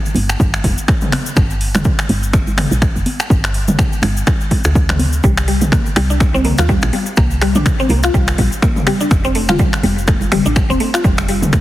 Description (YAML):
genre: afro house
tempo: 124 BPM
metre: 4/4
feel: swing 57% on 16ths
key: unclear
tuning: A4 = 440 Hz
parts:
  - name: cabasa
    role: percussion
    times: 0.1-11.6 s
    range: none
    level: -30 LUFS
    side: left 4 dB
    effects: none
  - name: congas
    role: percussion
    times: 0.1-11.5 s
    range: none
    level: -22 LUFS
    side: right 2 dB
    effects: none
  - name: woody FM bass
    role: bass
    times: 0.2-11.5 s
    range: Eb1 to Eb2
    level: -18 LUFS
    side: equal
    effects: sidechain pumping
  - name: house drum kit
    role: drums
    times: 0.2-11.6 s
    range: finger snaps, hi-hat, toms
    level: -19 LUFS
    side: equal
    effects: overdrive
  - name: electronic kick drum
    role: drums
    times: 0.4-11.6 s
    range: none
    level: -15 LUFS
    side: equal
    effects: overdrive
  - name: mallet-like synth pluck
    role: arpeggios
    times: 5.2-11.6 s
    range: G3 to F4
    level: -18 LUFS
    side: left 1 dB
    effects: wide subtle chorus, vintage 12-bit sampler grit, sidechain pumping, ping-pong delay
room: light reverb, digital ambience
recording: heavily compressed radio sound, multiband compression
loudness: -12 LUFS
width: side -15 dB against mid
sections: 0.0-11.6 A section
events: none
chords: 0.0 N.C.; 5.2 C7(no3); 9.1 F